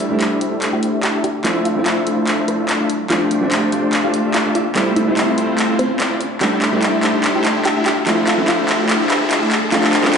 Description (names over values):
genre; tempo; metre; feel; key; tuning
future bass; 145 BPM; 4/4; swing 55% on 16ths, half-time; C major; A4 = 440 Hz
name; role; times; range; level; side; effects
warm grand piano; accompaniment; 0.0-10.2 s; F3 to E4; -21 LUFS; right 2 dB; tape echo
supersaw chords; riff; 0.0-10.2 s; A3 to E5; -18 LUFS; left 1 dB; low-pass filter
big-room dance drum kit; drums; 0.0-10.2 s; handclaps, hi-hat; -20 LUFS; equal; none
riser; sound effects; 1.4-10.2 s; none; -26 LUFS; left 1 dB; none
wide unison pluck; melody; 0.7-9.9 s; C4 to B5; -24 LUFS; equal; ping-pong delay
room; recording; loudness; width
wet digital room reverb, RT60 1.2 s, digital ambience; played on a big sound system in a bare room, large studio reverb, high-pass filter, nothing above 10.8 kHz; -14 LUFS; side -6 dB against mid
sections
0.0-10.2 A section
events
build-up 0.0-10.2; drum fill 0.0-10.2; filter sweep on supersaw synth 0.0-10.2; filter sweep on synth pluck 0.0-10.2; riser 1.4-10.2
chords
0.0 C69; 1.4 Dm9; 2.9 G9sus4; 4.8 Fmaj7; 6.4 C69; 8.1 Dm9; 9.5 G9sus4